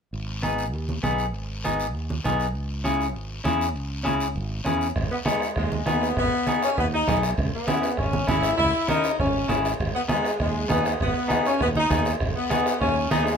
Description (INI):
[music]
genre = latin, cumbia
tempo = 199 BPM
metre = 4/4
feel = straight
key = G# minor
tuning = A4 = 440 Hz
[part]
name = fingered electric bass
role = bass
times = 0.1-13.4 s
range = G#1 to E2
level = -29 LUFS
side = right 1 dB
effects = none
[part]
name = guiro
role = percussion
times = 0.1-13.4 s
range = none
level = -38 LUFS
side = left 4 dB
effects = none
[part]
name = semi-hollow electric guitar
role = accompaniment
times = 0.4-13.3 s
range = B3 to A#4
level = -26 LUFS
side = left 2 dB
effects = none
[part]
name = congas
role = percussion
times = 0.4-13.3 s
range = none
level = -30 LUFS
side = right 2 dB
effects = none
[part]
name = bombo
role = percussion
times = 5.0-13.4 s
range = none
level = -28 LUFS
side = right 2 dB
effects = none
[part]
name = warm saxophone section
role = melody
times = 5.1-13.4 s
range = G#3 to E4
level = -25 LUFS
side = left 1 dB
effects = none
[sound]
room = moderate studio reverb, RT60 0.7 s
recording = minimal, uncompressed stereo recording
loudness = -22 LUFS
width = side -6 dB against mid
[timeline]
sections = 0.1-5.0 A section; 5.0-13.4 B section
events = none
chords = 0.1 G#m; 2.5 C#m; 5.0 G#m; 7.4 C#m; 9.8 G#m